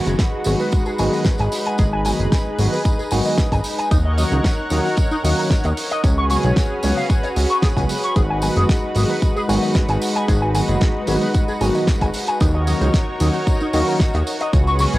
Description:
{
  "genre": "nu-disco, nu disco",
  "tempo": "113 BPM",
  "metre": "4/4",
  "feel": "straight",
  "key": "G# minor",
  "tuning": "A4 = 439 Hz",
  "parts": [
    { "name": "barky tine electric piano", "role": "accompaniment", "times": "0.0-15.0 s", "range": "C#3 to F#4", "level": "-25 LUFS", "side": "equal", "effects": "medium stereo tremolo, sidechain pumping, analog delay" },
    { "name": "lush unison pad", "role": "sustained chords", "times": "0.0-15.0 s", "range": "G#3 to F#5", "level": "-23 LUFS", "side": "equal", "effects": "chorus, sidechain pumping" },
    { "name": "electric guitar with an envelope filter", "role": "riff", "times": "0.1-15.0 s", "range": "D#4 to C#6", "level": "-25 LUFS", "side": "left 1 dB", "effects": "lush chorus" },
    { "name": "fat analog bass", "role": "bass", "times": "0.1-15.0 s", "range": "F#1 to D#2", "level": "-19 LUFS", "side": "equal", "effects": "none" },
    { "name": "damped 70s drum kit", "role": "drums", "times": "0.1-15.0 s", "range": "hi-hat, snare drum", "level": "-27 LUFS", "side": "right 1 dB", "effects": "studio reverb, cassette tape" },
    { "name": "tambourine", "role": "percussion", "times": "0.1-15.0 s", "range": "none", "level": "-34 LUFS", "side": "right 1 dB", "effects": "none" },
    { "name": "electronic kick drum", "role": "drums", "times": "0.2-14.6 s", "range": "none", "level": "-18 LUFS", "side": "equal", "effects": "studio reverb, cassette tape" }
  ],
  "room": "moderate spring reverb, RT60 1.9 s, small room reverb",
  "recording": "home recording on cassette",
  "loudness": "-16 LUFS",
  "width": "side -17 dB against mid",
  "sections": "0.0-15.0 A section",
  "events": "none",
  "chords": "0.0 G#m7; 3.9 D#m7; 6.0 C#7sus4; 8.2 G#m7; 12.4 D#m7",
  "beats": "0.20 0.73 1.26 | 1.79 2.32 2.85 3.38 | 3.91 4.44 4.97 5.51 | 6.04 6.57 7.10 7.63 | 8.16 8.69 9.22 9.75 | 10.29 10.82 11.35 11.88 | 12.41 12.94 13.47 14.00 | 14.53"
}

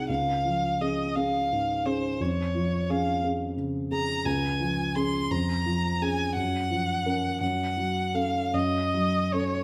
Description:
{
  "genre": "classical, romantic duo for violin and grand piano",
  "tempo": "57 BPM (dotted quarters)",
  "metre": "6/8",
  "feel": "rubato",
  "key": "Db major",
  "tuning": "A4 = 442 Hz",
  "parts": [
    { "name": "rich violin", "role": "melody", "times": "0.0-9.6 s", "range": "C5 to C6", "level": "-31 LUFS", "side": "equal", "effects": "none" },
    { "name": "warm baby grand piano", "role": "accompaniment", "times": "0.0-9.6 s", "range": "Db2 to Bb4", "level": "-30 LUFS", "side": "equal", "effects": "none" }
  ],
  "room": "wet stone room reverb, RT60 1.3 s",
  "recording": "none",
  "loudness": "-27 LUFS",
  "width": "mono",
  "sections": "0.0-9.6 A section",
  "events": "none",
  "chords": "0.1 Db; 2.2 Db/F; 4.3 Db; 5.3 Db/F; 6.4 Gbmaj7; 7.4 Gbm",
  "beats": "| 0.09 1.16 | 2.20 3.23 | 4.25 5.31 | 6.36 7.41 | 8.54"
}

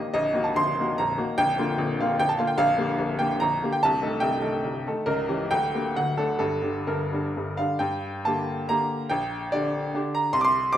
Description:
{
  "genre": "classical, romantic triple-time dance for piano with dotted rhythms",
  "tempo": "120-160 BPM",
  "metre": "3/4",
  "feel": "rubato",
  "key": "G minor",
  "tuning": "A4 = 440 Hz",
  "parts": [
    { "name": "bright baby grand piano", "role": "solo", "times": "0.0-10.8 s", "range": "Bb0 to D6", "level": "-23 LUFS", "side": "equal", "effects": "none" }
  ],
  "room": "moderate recital hall reverb, RT60 1.5 s",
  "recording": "minimal, uncompressed stereo recording",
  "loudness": "-23 LUFS",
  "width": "side -11 dB against mid",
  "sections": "0.0-7.8 A section; 7.8-10.8 B section",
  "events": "none",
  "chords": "0.1 Ebm/Bb; 1.4 Bb; 2.6 Gm/Bb; 3.8 Am7b5/C; 5.1 C#dim7; 5.5 Gm/D; 6.0 D; 6.4 Gm; 9.1 Gm/Bb",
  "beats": "| 0.14 0.56 0.97 | 1.37 1.78 2.20 | 2.58 2.98 3.40 | 3.79 4.20 4.63 | 5.06 5.50 5.96 | 6.40 6.88 7.36 | 7.81 8.25 8.70 | 9.11 9.53 9.96 | 10.35 10.75"
}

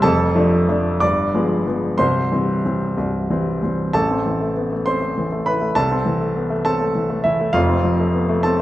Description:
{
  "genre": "classical, virtuoso piano study",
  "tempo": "60-68 BPM (dotted quarters)",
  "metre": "6/8",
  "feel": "rubato",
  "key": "A minor from 3.9 s",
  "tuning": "A4 = 440 Hz",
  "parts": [
    { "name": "warm baby grand piano", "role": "solo", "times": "0.0-8.6 s", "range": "C1 to D6", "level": "-17 LUFS", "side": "equal", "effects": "none" }
  ],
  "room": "wet recital hall reverb, RT60 1.5 s",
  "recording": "none",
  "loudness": "-17 LUFS",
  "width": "side -15 dB against mid",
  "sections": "0.0-3.9 A section; 3.9-8.6 B section",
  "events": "none",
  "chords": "0.0 Dm/F; 1.0 G7b9; 2.0 C; 3.9 Am; 5.8 Am/C; 7.5 F",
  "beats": "| 0.04 1.01 | 1.99 2.98 | 3.94 4.86 | 5.76 6.66 | 7.55 8.44"
}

